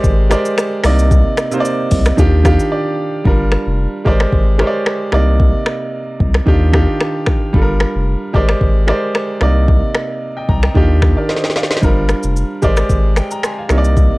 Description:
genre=afrobeats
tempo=112 BPM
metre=4/4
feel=swing 55% on 16ths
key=unclear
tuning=A4 = 442 Hz
part: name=clear grand piano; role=accompaniment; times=0.0-14.2 s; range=C3 to C6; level=-17 LUFS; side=right 1 dB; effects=none
part: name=saturated sub bass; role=bass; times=0.0-14.1 s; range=F1 to Eb2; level=-14 LUFS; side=equal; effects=none
part: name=afro-pop drum kit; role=drums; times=0.0-14.1 s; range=finger snaps, hi-hat, kick drum, rim click, shaker, snare drum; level=-15 LUFS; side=equal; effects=none
room=digital ambience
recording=dry, gritty hardware recording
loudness=-12 LUFS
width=side -22 dB against mid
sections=0.0-3.3 A section; 3.3-14.2 B section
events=grand piano fill 2.2-3.3; break 2.7-3.3; hi-hats muted 3.3-11.8; drum fill 11.3-11.8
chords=0.0 Abmaj9#11; 0.8 Cm9; 2.2 Ebmaj9; 3.3 Gm7; 4.1 Abmaj9#11; 5.1 Cm9; 6.5 Ebmaj9; 7.5 Gm7; 8.3 Abmaj9#11; 9.4 Cm9; 10.8 Ebmaj9; 11.8 Gm7; 12.6 Abmaj9#11

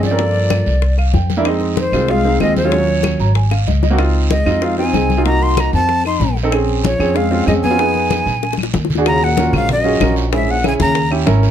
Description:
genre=Afro-Cuban jazz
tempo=190 BPM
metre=4/4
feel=straight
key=unclear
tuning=A4 = 439 Hz
part: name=breathy bright jazz flute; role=melody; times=0.0-11.1 s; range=C5 to C6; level=-19 LUFS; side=right 1 dB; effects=plate reverb
part: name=mellow trombone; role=second line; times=0.0-11.1 s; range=Gb2 to Eb4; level=-22 LUFS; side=left 6 dB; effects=none
part: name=clear grand piano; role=accompaniment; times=0.0-11.5 s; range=Gb3 to Bb5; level=-18 LUFS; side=right 4 dB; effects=none
part: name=upright bass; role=bass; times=0.0-11.5 s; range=Ab1 to G2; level=-17 LUFS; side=equal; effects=none
part: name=bongos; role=percussion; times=0.0-11.5 s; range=none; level=-25 LUFS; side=left 11 dB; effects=none
part: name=congas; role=percussion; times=0.0-11.4 s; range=none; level=-23 LUFS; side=left 4 dB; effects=none
part: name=guiro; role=percussion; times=0.0-11.5 s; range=none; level=-31 LUFS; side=right 6 dB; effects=none
part: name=claves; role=percussion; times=0.5-11.3 s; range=none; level=-29 LUFS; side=left 3 dB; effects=none
room=light reverb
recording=dark, warm production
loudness=-13 LUFS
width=side -10 dB against mid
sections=0.0-9.1 A section; 9.1-11.5 B section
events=grand piano fill 0.8-1.5, 3.0-4.0; drum fill 3.5-4.0, 8.4-9.1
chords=0.2 Gm7; 0.8 C5; 1.5 Fm7; 2.7 Ebm7; 3.4 Ab5; 4.0 Dbmaj9; 5.3 Cm7b5; 5.9 F7; 6.5 Bbm9; 7.8 Fm7b5; 8.4 N.C.; 9.1 Ebm11; 10.3 Bbm7b5; 11.0 Eb7b9

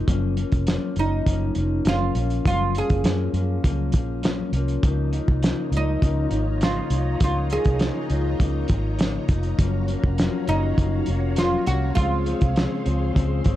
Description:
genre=indie pop, bedroom pop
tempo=101 BPM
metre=4/4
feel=straight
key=Db major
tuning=A4 = 442 Hz
part: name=mellow electric guitar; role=accompaniment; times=0.0-13.6 s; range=Gb2 to Eb4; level=-28 LUFS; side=left 4 dB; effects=wide subtle chorus, warbly pitch drift
part: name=vintage muted fingered electric bass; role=bass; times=0.1-13.6 s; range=F1 to Gb2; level=-24 LUFS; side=equal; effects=none
part: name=cloth-damped thuddy drum kit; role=drums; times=0.1-13.6 s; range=hi-hat, kick drum, snare drum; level=-23 LUFS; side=equal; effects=vintage 12-bit sampler grit
part: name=oud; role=melody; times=1.0-13.6 s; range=Eb4 to Ab4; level=-27 LUFS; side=right 2 dB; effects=analog chorus, analog delay
part: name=string machine, violas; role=sustained chords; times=4.8-13.6 s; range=F4 to C6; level=-34 LUFS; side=equal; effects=ensemble chorus
room=light reverb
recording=dark, warm production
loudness=-20 LUFS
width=side -14 dB against mid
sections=0.0-13.6 A section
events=none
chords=0.1 Gbmaj7; 4.8 Db69; 9.6 Gbmaj7; 12.0 Dbmaj7

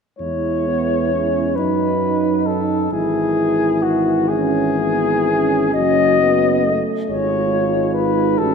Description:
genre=classical, hymn-like piece for brass band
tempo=40-46 BPM (dotted quarters)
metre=6/8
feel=rubato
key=E major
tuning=A4 = 439 Hz
part: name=warm flugelhorn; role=melody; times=0.2-8.5 s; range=F#4 to D#5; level=-19 LUFS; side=left 5 dB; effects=none
part: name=dark French horn section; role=second line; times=0.2-8.5 s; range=B3 to E4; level=-22 LUFS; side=right 6 dB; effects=none
part: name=mellow trombone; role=accompaniment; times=0.2-8.5 s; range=E3 to B3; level=-26 LUFS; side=right 4 dB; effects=none
part: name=warm euphonium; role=accompaniment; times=0.2-8.5 s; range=D#4 to F#4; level=-23 LUFS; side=left 1 dB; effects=none
part: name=mellow tuba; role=bass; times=0.2-8.5 s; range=F#1 to F#2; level=-25 LUFS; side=equal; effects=none
room=moderate church reverb, RT60 3.3 s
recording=minimal, uncompressed stereo recording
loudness=-15 LUFS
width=side -6 dB against mid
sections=0.2-8.5 A section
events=none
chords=0.2 E; 1.6 B/F#; 2.9 E/G#; 5.7 F#m; 7.1 C#/G#

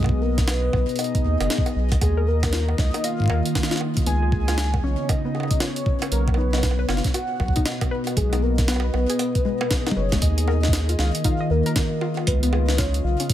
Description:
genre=IDM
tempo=117 BPM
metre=4/4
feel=swing 62% on 16ths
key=unclear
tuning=A4 = 441 Hz
part: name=warm velvety synth lead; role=melody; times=0.0-13.3 s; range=G#4 to G#5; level=-28 LUFS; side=equal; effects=chorus, tremolo, digital delay
part: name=warbly tape-like pad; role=sustained chords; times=0.0-13.3 s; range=B2 to D#5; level=-28 LUFS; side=left 1 dB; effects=chorus, built-in reverb, vintage 12-bit sampler grit, sidechain pumping
part: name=round analog bass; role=bass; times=0.0-13.2 s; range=F#1 to D#2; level=-22 LUFS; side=equal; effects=none
part: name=electronic kick drum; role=drums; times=0.0-13.3 s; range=none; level=-23 LUFS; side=equal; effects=none
part: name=jungle sampler-style drum kit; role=drums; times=0.0-13.3 s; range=bongos, hi-hat, snare drum, toms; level=-28 LUFS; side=right 2 dB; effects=none
part: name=warbly dusty pluck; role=arpeggios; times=2.2-13.2 s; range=G#3 to D#5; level=-32 LUFS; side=left 4 dB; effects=chorus, cassette tape, digital delay
room=little or no reverb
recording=none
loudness=-19 LUFS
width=side -12 dB against mid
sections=0.0-10.2 A section; 10.2-13.3 B section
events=drum fill 9.8-10.2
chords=0.0 G#m/B; 2.0 D#sus2; 4.1 C#7; 6.1 B; 8.2 G#m/B; 10.2 D#sus2; 12.3 C#7

